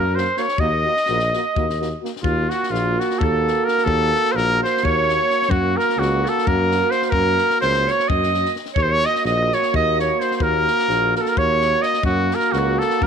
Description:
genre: balkan folk, Balkan brass band.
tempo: 256 BPM (eighths).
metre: 7/8.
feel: straight.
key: Eb dorian sharp4.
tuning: A4 = 441 Hz.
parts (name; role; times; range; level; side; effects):
warm trumpet; melody; 0.0-13.1 s; F4 to Eb5; -20 LUFS; left 3 dB; none.
clear clarinet; second line; 0.0-13.1 s; F4 to Eb5; -23 LUFS; right 10 dB; none.
warm trombone; accompaniment; 0.0-13.1 s; Bb3; -28 LUFS; right 13 dB; none.
mellow tuba; bass; 0.0-13.1 s; Bb1 to Gb2; -23 LUFS; left 1 dB; none.
warm euphonium; accompaniment; 0.1-13.1 s; Gb4; -29 LUFS; left 10 dB; none.
compact cocktail drum kit; percussion; 0.2-13.1 s; kick drum, snare drum; -27 LUFS; left 3 dB; none.
room: light reverb.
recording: 1960s-style stereo with parts hard left and right.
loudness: -17 LUFS.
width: side -7 dB against mid.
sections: 0.0-2.2 A section; 2.2-13.1 A section.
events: none.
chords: 0.0 Gb; 0.6 Ebm; 5.5 Gb; 8.8 Ebm; 12.0 Gb.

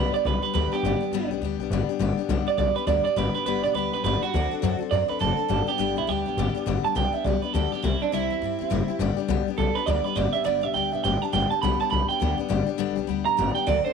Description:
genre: rockabilly.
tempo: 206 BPM.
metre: 4/4.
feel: swing 61% on 8ths.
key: G major.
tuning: A4 = 440 Hz.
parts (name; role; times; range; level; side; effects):
electric guitar through a small old amp; melody; 0.0-13.9 s; D4 to B5; -25 LUFS; right 10 dB; tape echo.
picked steel-string acoustic guitar; accompaniment; 0.0-13.9 s; G2 to A4; -27 LUFS; left 14 dB; none.
upright bass; bass; 0.0-13.9 s; F#1 to G2; -27 LUFS; left 1 dB; none.
room: light reverb, studio reverb.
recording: 1960s-style stereo with parts hard left and right.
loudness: -22 LUFS.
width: side -6 dB against mid.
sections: 0.0-6.7 A section; 6.7-13.9 A section.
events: clean electric guitar solo 0.0-13.9.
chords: 0.0 G; 4.3 D7; 5.5 G; 7.8 C; 9.0 G.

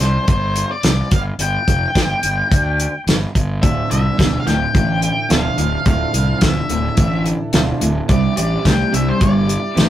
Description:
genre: classic rock.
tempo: 108 BPM.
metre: 4/4.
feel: straight.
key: D dorian.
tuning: A4 = 443 Hz.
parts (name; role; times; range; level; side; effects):
octave-fuzz lead guitar; melody; 0.0-9.9 s; C5 to G5; -22 LUFS; left 2 dB; distortion.
fuzz fingered electric bass; bass; 0.0-9.9 s; D1 to D2; -20 LUFS; equal; overdrive.
damped 70s drum kit; drums; 0.0-9.9 s; hi-hat, kick drum, snare drum; -16 LUFS; equal; none.
fingerpicked twelve-string acoustic guitar; accompaniment; 3.6-9.9 s; C3 to A4; -26 LUFS; right 3 dB; none.
distorted electric guitar; riff; 3.6-9.9 s; D2 to A3; -24 LUFS; right 4 dB; distortion.
sludgy distorted guitar; riff; 3.6-9.9 s; D2 to A3; -23 LUFS; left 3 dB; overdrive.
room: moderate studio reverb, RT60 0.6 s.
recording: rough rehearsal-room recording, warm saturation.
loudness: -14 LUFS.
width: side -12 dB against mid.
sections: 0.0-9.9 A section.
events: none.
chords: 0.0 C5; 1.1 G5; 3.6 Dmadd9; 8.1 Cadd9.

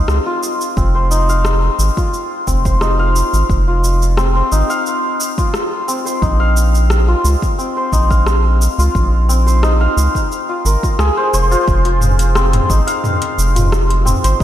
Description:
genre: organic downtempo.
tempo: 88 BPM.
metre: 4/4.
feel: straight.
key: F minor.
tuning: A4 = 439 Hz.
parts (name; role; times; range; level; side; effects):
santur; arpeggios; 0.0-14.4 s; C4 to F5; -18 LUFS; left 1 dB; vintage 12-bit sampler grit, diffuse ambient delay.
round analog bass; bass; 0.0-14.4 s; F1 to Db2; -14 LUFS; equal; none.
deep house drum kit; drums; 0.1-14.4 s; cabasa, hi-hat, rim click, toms; -22 LUFS; equal; overdrive.
electronic kick drum; drums; 0.8-14.4 s; none; -18 LUFS; equal; overdrive.
room: moderate lush hall reverb, RT60 2.8 s.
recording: dreamy mix soaked in reverb.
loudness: -12 LUFS.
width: side -12 dB against mid.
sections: 0.0-11.7 A section; 11.7-14.4 B section.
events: none.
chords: 0.0 Bbm (rootless); 0.8 F5; 6.2 Bb5; 11.7 Fm.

